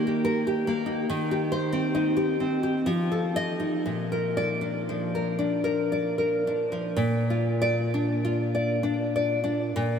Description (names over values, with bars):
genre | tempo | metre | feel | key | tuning
romantic piece for solo classical guitar | 56-73 BPM | 3/4 | rubato | Bb major | A4 = 438 Hz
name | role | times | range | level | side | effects
nylon-string guitar | solo | 0.0-10.0 s | Bb2 to Eb5 | -24 LUFS | equal | wide subtle chorus, analog delay
room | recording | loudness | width
wet huge ambient reverb, RT60 8.4 s | dreamy mix soaked in reverb | -24 LUFS | side -7 dB against mid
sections
0.0-7.0 A section; 7.0-10.0 B section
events
none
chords
0.0 Eb; 1.1 Cm/Eb; 2.9 F7; 3.9 Bb